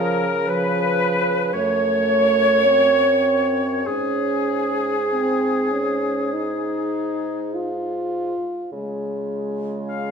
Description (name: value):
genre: classical, slow romantic movement for wind quintet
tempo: 47-59 BPM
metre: 4/4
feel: rubato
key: Db major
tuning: A4 = 441 Hz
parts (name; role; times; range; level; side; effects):
- bright concert flute; melody; 0.0-10.1 s; Ab4 to F5; -26 LUFS; left 9 dB; none
- clear oboe; second line; 0.0-10.1 s; Ab4 to F5; -27 LUFS; left 4 dB; none
- dark clarinet; accompaniment; 0.0-10.1 s; F4 to Db5; -22 LUFS; right 5 dB; none
- mellow French horn; accompaniment; 0.0-10.1 s; F3 to F4; -25 LUFS; left 1 dB; none
- dark bassoon; bass; 0.0-10.1 s; Gb2 to Db3; -27 LUFS; right 2 dB; none
room: wet recital hall reverb, RT60 1.5 s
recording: minimal, uncompressed stereo recording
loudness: -18 LUFS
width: side -6 dB against mid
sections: 0.0-8.7 A section; 8.7-10.1 B section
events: none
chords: 0.0 Db7; 1.5 Gbm; 3.9 Db5/Ab; 6.3 Ab5; 8.7 Db